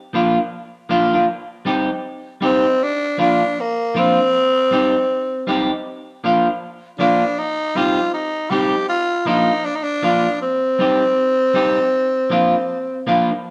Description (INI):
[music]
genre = reggae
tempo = 79 BPM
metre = 4/4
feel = swing 62% on 16ths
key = unclear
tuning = A4 = 439 Hz
[part]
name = semi-hollow electric guitar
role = accompaniment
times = 0.1-13.4 s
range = F3 to G4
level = -21 LUFS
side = equal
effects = spring reverb
[part]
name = growling tenor saxophone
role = melody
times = 2.4-13.0 s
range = Bb3 to G4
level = -20 LUFS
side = equal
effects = none
[sound]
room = wet studio reverb, RT60 0.5 s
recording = band playing live in one room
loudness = -18 LUFS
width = mono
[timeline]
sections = 0.0-13.5 A section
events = none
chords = 0.0 Bb; 1.3 Cm; 2.8 Bb; 4.3 Cm; 5.8 Bb; 7.4 Cm; 8.9 Bb; 10.4 Cm; 11.9 Bb